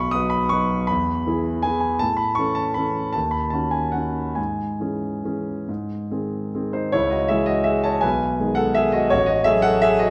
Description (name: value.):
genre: classical, piano waltz.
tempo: 133-174 BPM.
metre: 3/4.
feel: rubato.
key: C# minor.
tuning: A4 = 440 Hz.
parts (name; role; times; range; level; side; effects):
warm concert grand piano; solo; 0.0-10.1 s; A1 to D#6; -22 LUFS; equal; none.
room: moderate recital hall reverb, RT60 1.6 s.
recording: dark, warm production.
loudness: -22 LUFS.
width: mono.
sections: 0.0-6.9 A section; 6.9-10.1 B section.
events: none.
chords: 0.0 B; 0.9 E; 2.0 A; 3.2 D#m7b5; 4.4 C#m/G#; 5.7 G#; 6.9 C#m; 8.0 G#m/B; 9.1 F#m/A.